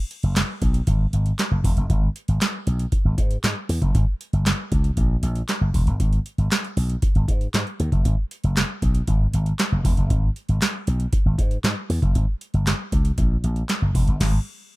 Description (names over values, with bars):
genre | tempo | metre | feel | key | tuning
early-eighties boogie funk | 117 BPM | 4/4 | straight | unclear | A4 = 435 Hz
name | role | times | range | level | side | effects
booming analog drum machine | drums | 0.1-14.4 s | crash cymbal, handclaps, hi-hat, kick drum, snare drum | -22 LUFS | equal | overdrive
slap bass with an envelope filter | bass | 0.2-14.4 s | E1 to G#2 | -21 LUFS | equal | none
room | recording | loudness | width
little or no reverb | rough home demo mix | -19 LUFS | side -20 dB against mid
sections
0.0-14.8 A section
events
band accent 14.2-14.8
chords
none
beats
0.36 0.87 1.39 | 1.90 2.41 2.92 3.44 | 3.95 4.46 4.97 5.49 | 6.00 6.51 7.03 7.54 | 8.05 8.56 9.08 9.59 | 10.10 10.62 11.13 11.64 | 12.15 12.67 13.18 13.69 | 14.21